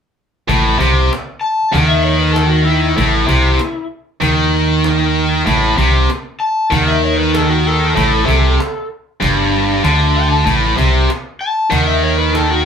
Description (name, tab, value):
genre	blues rock power trio and southern rock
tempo	96 BPM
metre	4/4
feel	straight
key	unclear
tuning	A4 = 438 Hz
part	tight distorted guitar	riff	0.5-12.7 s	G2 to D#3	-14 LUFS	equal	distortion
part	growling fingered electric bass	bass	0.5-12.7 s	G1 to D#2	-16 LUFS	equal	overdrive
part	cajon	drums	0.5-12.5 s	none	-24 LUFS	right 2 dB	none
part	overdriven slide guitar	melody	1.4-12.7 s	E4 to A5	-18 LUFS	left 3 dB	none
room	wet studio reverb, RT60 0.5 s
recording	band playing live in one room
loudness	-12 LUFS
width	side -7 dB against mid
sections	0.5-12.7 A section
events	none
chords	0.5 A5